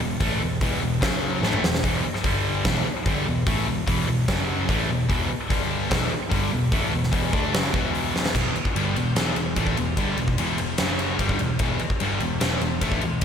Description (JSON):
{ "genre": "hard rock", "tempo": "148 BPM", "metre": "4/4", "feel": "straight", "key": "E minor", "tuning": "A4 = 439 Hz", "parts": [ { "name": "high-gain distorted guitar", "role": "riff", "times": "0.0-13.2 s", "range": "E2 to D4", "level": "-27 LUFS", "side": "left 9 dB", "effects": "distortion, slapback echo" }, { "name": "sludgy distorted guitar", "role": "riff", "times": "0.0-13.2 s", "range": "E2 to D4", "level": "-28 LUFS", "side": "right 8 dB", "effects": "overdrive" }, { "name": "picked electric bass", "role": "bass", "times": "0.0-13.2 s", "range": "E1 to D2", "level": "-29 LUFS", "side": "equal", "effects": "none" }, { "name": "huge arena drum kit", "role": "drums", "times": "0.2-13.2 s", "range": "crash cymbal, hi-hat, kick drum, ride cymbal, snare drum, toms", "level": "-25 LUFS", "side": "equal", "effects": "none" } ], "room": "moderate lush hall reverb, RT60 2.1 s", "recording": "big arena sound", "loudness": "-21 LUFS", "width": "side -8 dB against mid", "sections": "0.0-8.3 A section; 8.3-13.2 B section", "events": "drum fill 1.4-1.8, 8.1", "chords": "0.0 E5; 1.0 F#5; 1.4 E5; 2.2 G5; 2.7 Em; 4.3 F#5; 4.7 E5; 5.5 G5; 5.9 Em; 10.8 F#5; 11.2 Em", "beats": "| 0.21 0.61 1.02 1.43 | 1.84 2.24 2.65 3.06 | 3.47 3.87 4.28 4.69 | 5.09 5.50 5.91 6.32 | 6.72 7.13 7.54 7.94 | 8.35 8.76 9.16 9.57 | 9.97 10.38 10.79 11.20 | 11.60 12.01 12.41 12.82 | 13.23" }